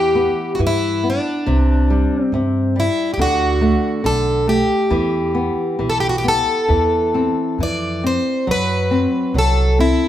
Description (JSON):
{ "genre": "fado-style ballad", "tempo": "68 BPM", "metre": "2/4", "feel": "rubato", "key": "E minor", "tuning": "A4 = 441 Hz", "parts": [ { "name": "picked plugged-in twelve-string acoustic guitar", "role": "melody", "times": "0.0-10.1 s", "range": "D4 to D5", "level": "-18 LUFS", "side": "left 1 dB", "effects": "none" }, { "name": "flamenco guitar", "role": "accompaniment", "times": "0.0-10.1 s", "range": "C3 to C4", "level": "-21 LUFS", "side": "left 1 dB", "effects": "none" }, { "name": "upright bass", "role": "bass", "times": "0.0-9.9 s", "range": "B1 to G2", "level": "-20 LUFS", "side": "right 1 dB", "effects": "none" } ], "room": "moderate studio reverb, RT60 0.7 s", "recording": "band playing live in one room", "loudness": "-15 LUFS", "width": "side -12 dB against mid", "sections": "0.0-10.1 A section", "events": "none", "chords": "0.0 Em; 1.5 Csus2; 3.2 D; 4.9 Em; 6.7 Am/E; 8.5 Cmaj7(b5, no3)", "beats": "0.59 | 1.47 2.33 | 3.17 4.03 | 4.90 5.80 | 6.70 7.60 | 8.48 9.36" }